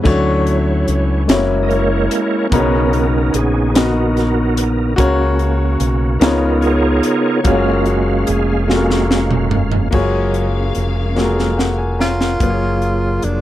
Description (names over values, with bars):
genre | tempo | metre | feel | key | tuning
slow gospel | 49 BPM (dotted quarters) | 6/8 | straight | F# major | A4 = 439 Hz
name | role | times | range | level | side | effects
clear grand piano | accompaniment | 0.0-13.4 s | C#3 to A#5 | -18 LUFS | left 3 dB | none
bright tonewheel organ | sustained chords | 0.0-13.4 s | F#3 to E#5 | -19 LUFS | right 3 dB | slow rotary speaker, chorus vibrato
fingered electric bass with an envelope filter | bass | 0.1-13.4 s | E#1 to D2 | -18 LUFS | equal | none
crisp fusion drum kit | drums | 0.1-13.4 s | crash cymbal, hi-hat, kick drum, snare drum, splash cymbal, toms | -18 LUFS | equal | none
warm studio string section | sustained chords | 9.9-12.4 s | C#3 to E#5 | -28 LUFS | equal | none
breathy tenor saxophone | melody | 12.0-13.4 s | D4 to E#4 | -20 LUFS | right 1 dB | none
room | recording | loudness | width
little or no reverb | none | -13 LUFS | side -13 dB against mid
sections
0.0-9.9 A section; 9.9-12.4 B section; 12.4-13.4 C section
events
tonewheel organ solo 0.0-9.9; drum fill 8.7-9.9, 11.2-12.4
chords
0.1 Dmaj7; 1.3 F#7; 2.5 Bmaj9; 5.0 F#/C#; 6.2 C#13; 7.5 F#maj9